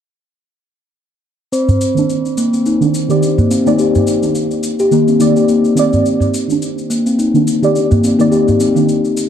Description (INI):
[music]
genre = organic downtempo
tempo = 106 BPM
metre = 4/4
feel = swing 56% on 16ths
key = C minor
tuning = A4 = 440 Hz
[part]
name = shaker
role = drums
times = 1.5-9.3 s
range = none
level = -28 LUFS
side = left 3 dB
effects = none
[part]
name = quartz singing bowl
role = texture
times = 1.5-9.3 s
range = C4 to C5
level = -24 LUFS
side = equal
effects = none
[part]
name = udu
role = percussion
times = 1.7-8.6 s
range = none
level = -16 LUFS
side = right 1 dB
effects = none
[part]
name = deep mellow chord stab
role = accompaniment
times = 1.9-8.9 s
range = Eb3 to D5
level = -16 LUFS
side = right 3 dB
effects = chorus, tape echo
[part]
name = steel tongue drum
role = arpeggios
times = 2.4-9.3 s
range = Bb3 to G4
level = -13 LUFS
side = left 2 dB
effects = low-pass filter, tape echo
[sound]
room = wet lush hall reverb, RT60 1.5 s, small room ambience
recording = dark, warm production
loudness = -11 LUFS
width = side -9 dB against mid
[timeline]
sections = 1.5-9.3 A section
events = none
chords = 1.5 Cm7